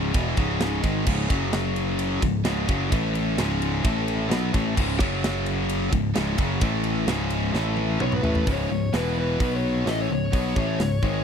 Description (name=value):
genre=heavy metal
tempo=130 BPM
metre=4/4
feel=straight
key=C# minor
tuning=A4 = 439 Hz
part: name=high-gain distorted guitar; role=riff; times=0.0-11.2 s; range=C#2 to B3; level=-27 LUFS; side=left 12 dB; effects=distortion
part: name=high-gain distorted guitar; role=riff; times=0.0-11.2 s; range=C#2 to B3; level=-28 LUFS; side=right 13 dB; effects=distortion
part: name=picked electric bass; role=bass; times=0.0-11.2 s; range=C#1 to B1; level=-27 LUFS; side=equal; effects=none
part: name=tight metal drum kit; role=drums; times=0.1-11.1 s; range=crash cymbal, hi-hat, kick drum, ride cymbal, snare drum, toms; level=-28 LUFS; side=right 1 dB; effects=none
part: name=bluesy overdriven lead guitar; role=melody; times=8.0-11.2 s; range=B4 to D#5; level=-29 LUFS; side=left 4 dB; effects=distortion
room=small room ambience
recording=dry, close 1970s-style studio recording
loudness=-22 LUFS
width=side -7 dB against mid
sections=0.0-8.5 A section; 8.5-11.2 B section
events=drum fill 7.5-8.5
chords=0.0 C#m; 1.3 F#5; 2.2 C#5; 2.9 A5; 3.4 C#5; 3.8 A5; 4.3 C#m; 5.0 F#5; 5.9 C#5; 6.6 A5; 7.1 C#5; 7.5 A5; 8.0 A69; 8.5 C#5; 8.9 E5; 9.4 B5; 9.9 C#m